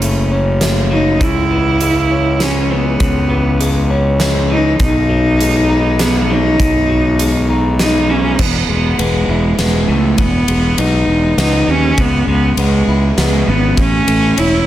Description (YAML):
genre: post-rock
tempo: 100 BPM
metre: 3/4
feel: straight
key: E major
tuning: A4 = 440 Hz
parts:
  - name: clear cello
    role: melody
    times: 0.0-14.7 s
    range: G#3 to E4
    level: -16 LUFS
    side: right 1 dB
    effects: digital delay
  - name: electric guitar through a small old amp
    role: arpeggios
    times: 0.0-14.7 s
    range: F#2 to E4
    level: -20 LUFS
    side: left 4 dB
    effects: digital delay
  - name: fuzz fingered electric bass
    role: bass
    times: 0.0-14.6 s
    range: E1 to D#2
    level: -16 LUFS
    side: equal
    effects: overdrive
  - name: huge arena drum kit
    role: drums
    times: 0.0-14.5 s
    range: crash cymbal, hi-hat, kick drum, ride cymbal, snare drum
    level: -19 LUFS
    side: equal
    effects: none
room: light reverb, small room ambience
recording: none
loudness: -11 LUFS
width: side -13 dB against mid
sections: 0.0-8.4 A section; 8.4-14.7 B section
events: none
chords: 0.0 F#m; 1.2 C#m; 4.8 B6; 8.4 E; 12.0 C#m7; 13.8 A